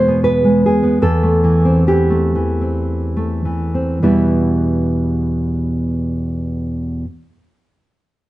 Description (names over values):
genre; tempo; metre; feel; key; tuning
romantic piece for solo classical guitar; 50-81 BPM; 3/4; rubato; E minor; A4 = 440 Hz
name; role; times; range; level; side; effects
nylon-string guitar; solo; 0.0-7.0 s; E2 to C5; -14 LUFS; equal; none
room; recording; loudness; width
moderate studio reverb, RT60 0.8 s; nothing above 10.5 kHz; -14 LUFS; side -16 dB against mid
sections
0.0-4.0 A section; 4.0-8.3 B section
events
slowing down 0.0-4.0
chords
0.0 E; 1.0 Am/E; 4.0 Em